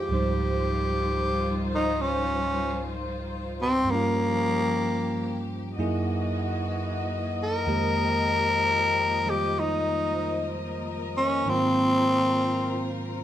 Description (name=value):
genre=jazz ballad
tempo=63 BPM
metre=4/4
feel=swing 68% on 8ths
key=unclear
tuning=A4 = 440 Hz
part: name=growling tenor saxophone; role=melody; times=0.0-13.1 s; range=Bb3 to Bb4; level=-24 LUFS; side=left 1 dB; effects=none
part: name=bell-like tine electric piano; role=accompaniment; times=0.0-13.2 s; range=Db2 to F5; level=-29 LUFS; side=right 2 dB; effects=none
part: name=rich studio string section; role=sustained chords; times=0.0-13.2 s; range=Eb3 to Eb5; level=-33 LUFS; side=left 3 dB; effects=none
room=wet small room reverb, RT60 0.6 s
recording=band playing live in one room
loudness=-23 LUFS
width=side -11 dB against mid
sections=0.1-13.2 A section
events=none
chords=0.1 Dbmaj9#11; 3.9 Gm7b5; 5.8 Gb13; 7.7 Fm11; 11.4 Ab13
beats=| 0.09 1.05 2.00 2.94 | 3.89 4.83 5.77 6.72 | 7.67 8.61 9.55 10.50 | 11.45 12.40